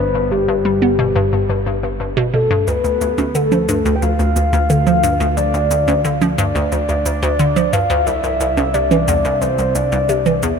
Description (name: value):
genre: ambient, sequencer-driven space music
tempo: 89 BPM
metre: 4/4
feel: straight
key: D dorian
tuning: A4 = 439 Hz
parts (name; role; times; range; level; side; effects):
- soft octave-layered synth lead; melody; 0.0-10.4 s; G4 to G5; -18 LUFS; left 1 dB; chorus, phaser, ping-pong delay
- hollow square pluck; riff; 0.0-10.5 s; C2 to B3; -18 LUFS; equal; chorus, ping-pong delay
- fat analog bass; bass; 0.0-10.6 s; G1 to D2; -23 LUFS; right 1 dB; none
- cabasa and congas; percussion; 2.7-10.6 s; none; -26 LUFS; right 5 dB; ping-pong delay
room: moderate huge ambient reverb, RT60 8.8 s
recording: none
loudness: -14 LUFS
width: side -6 dB against mid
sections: 0.0-10.6 A section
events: none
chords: 0.0 G; 2.7 Dm; 8.1 C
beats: 0.65 1.33 2.00 | 2.67 3.35 4.02 4.70 | 5.37 6.05 6.72 7.39 | 8.07 8.74 9.42 10.09